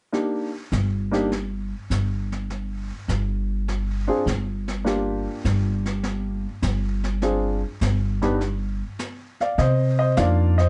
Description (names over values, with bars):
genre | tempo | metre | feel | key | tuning
jazz piano trio | 102 BPM | 4/4 | swing 69% on 8ths | unclear | A4 = 440 Hz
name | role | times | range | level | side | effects
warm grand piano | melody | 0.1-10.7 s | G2 to F5 | -26 LUFS | equal | none
jazz brush drum kit | drums | 0.1-10.7 s | brushed snare drum, hi-hat, snare drum | -36 LUFS | equal | none
upright bass | bass | 0.7-10.7 s | G1 to C3 | -26 LUFS | equal | none
room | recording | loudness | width
light reverb | nothing above 10.8 kHz | -24 LUFS | mono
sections
0.1-9.6 A section; 9.6-10.7 B section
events
break 8.4-9.6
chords
0.1 Gm; 9.6 Cm11